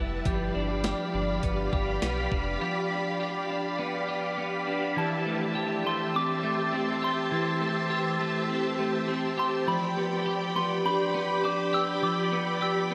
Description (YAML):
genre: dream pop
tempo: 102 BPM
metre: 4/4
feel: straight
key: unclear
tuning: A4 = 438 Hz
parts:
  - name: ensemble organ-string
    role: sustained chords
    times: 0.0-12.9 s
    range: G3 to B5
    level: -32 LUFS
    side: equal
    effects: ensemble chorus
  - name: semi-hollow electric guitar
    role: arpeggios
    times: 0.0-12.9 s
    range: E3 to G4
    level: -33 LUFS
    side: equal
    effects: subtle chorus, tape echo
  - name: round analog bass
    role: bass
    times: 0.0-2.6 s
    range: F1 to B1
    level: -36 LUFS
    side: equal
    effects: none
  - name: clean 12-bit digital drum machine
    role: drums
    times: 0.3-2.5 s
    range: hi-hat, kick drum, snare drum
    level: -36 LUFS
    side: equal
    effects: none
  - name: soft synth bell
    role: melody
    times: 5.0-12.9 s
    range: A5 to E6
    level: -34 LUFS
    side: equal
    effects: chorus, phaser, tape echo
room: wet huge ambient reverb, RT60 7.6 s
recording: dreamy mix soaked in reverb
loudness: -28 LUFS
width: mono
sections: 0.0-5.0 A section; 5.0-12.9 B section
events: none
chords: 0.3 G7; 5.0 Am7; 9.7 G7